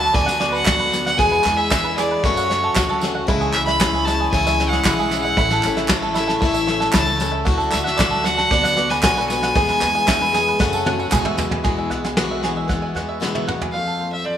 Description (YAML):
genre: indie folk with a building arrangement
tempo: 115 BPM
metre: 4/4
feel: straight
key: unclear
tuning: A4 = 440 Hz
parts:
  - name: clear fiddle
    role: melody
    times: 0.0-14.4 s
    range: C#5 to B5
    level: -20 LUFS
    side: equal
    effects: slapback echo
  - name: picked plugged-in swing-style acoustic guitar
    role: accompaniment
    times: 0.0-13.8 s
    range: E2 to G#4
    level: -24 LUFS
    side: left 5 dB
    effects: none
  - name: warm studio string section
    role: sustained chords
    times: 0.0-11.6 s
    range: C#3 to G#4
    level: -30 LUFS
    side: equal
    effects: none
  - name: bluegrass banjo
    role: arpeggios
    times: 0.0-14.4 s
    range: E4 to G#5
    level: -25 LUFS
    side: right 5 dB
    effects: slapback echo
  - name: upright bass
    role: bass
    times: 0.0-13.7 s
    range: A1 to F#2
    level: -28 LUFS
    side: equal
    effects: none
  - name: soft brush drum kit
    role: drums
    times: 0.1-13.7 s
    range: kick drum, snare drum, toms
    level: -22 LUFS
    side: equal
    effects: none
  - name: tambourine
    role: percussion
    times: 0.3-11.5 s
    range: none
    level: -35 LUFS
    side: right 8 dB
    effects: none
  - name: group handclap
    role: percussion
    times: 0.7-11.2 s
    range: none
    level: -29 LUFS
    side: right 4 dB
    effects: slapback echo
  - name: fingerpicked steel-string acoustic guitar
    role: accompaniment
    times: 11.7-14.4 s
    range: E2 to F#4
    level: -30 LUFS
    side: left 2 dB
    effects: none
room: moderate lush hall reverb, RT60 2.4 s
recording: big arena sound, faint mains hum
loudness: -16 LUFS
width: side -10 dB against mid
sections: 0.0-11.6 A section; 11.6-13.8 B section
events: drum fill 10.6-11.6, 13.2-13.8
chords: 0.1 Bm/D; 1.2 E; 2.2 F#m; 3.3 C#m; 5.4 A; 7.5 D; 8.5 Bm/D; 9.6 E; 10.6 F#m; 11.1 Eadd9; 13.8 F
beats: 0.14 0.66 | 1.19 1.71 2.23 2.75 | 3.28 3.80 4.32 4.85 | 5.37 5.89 6.41 6.94 | 7.46 7.98 8.51 9.03 | 9.55 10.07 10.60 11.12 | 11.65 12.17 12.70 13.22 | 13.75 14.28